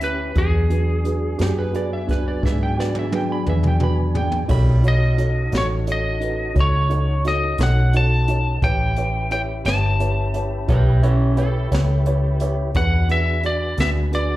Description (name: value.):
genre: slow blues.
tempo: 58 BPM (dotted quarters).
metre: 12/8.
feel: straight.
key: E mixolydian.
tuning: A4 = 440 Hz.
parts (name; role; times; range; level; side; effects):
lightly driven lead guitar; melody; 0.0-14.4 s; G#4 to A5; -24 LUFS; left 1 dB; slapback echo.
dark upright piano; accompaniment; 0.0-14.4 s; C#4 to D5; -28 LUFS; right 3 dB; slapback echo.
mellow tonewheel organ; sustained chords; 0.0-14.4 s; F#3 to B4; -30 LUFS; left 1 dB; slow rotary speaker.
vintage muted fingered electric bass; bass; 0.0-14.4 s; G1 to G#2; -19 LUFS; equal; none.
jazz brush drum kit; drums; 0.0-14.3 s; crash cymbal, hi-hat, kick drum, snare drum, toms; -24 LUFS; equal; none.
electric slide guitar; second line; 1.4-12.5 s; C#4 to B5; -29 LUFS; right 2 dB; slapback echo.
room: small room ambience.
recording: live gig heard through the venue's PA, club reverb.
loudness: -17 LUFS.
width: side -16 dB against mid.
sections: 0.0-14.4 A section.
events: drum fill 2.4-4.5.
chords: 0.4 E9; 4.5 B9; 8.6 A9; 12.8 E9.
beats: | 0.36 1.40 2.43 3.46 | 4.50 5.53 6.56 7.59 | 8.62 9.66 10.69 11.72 | 12.75 13.78.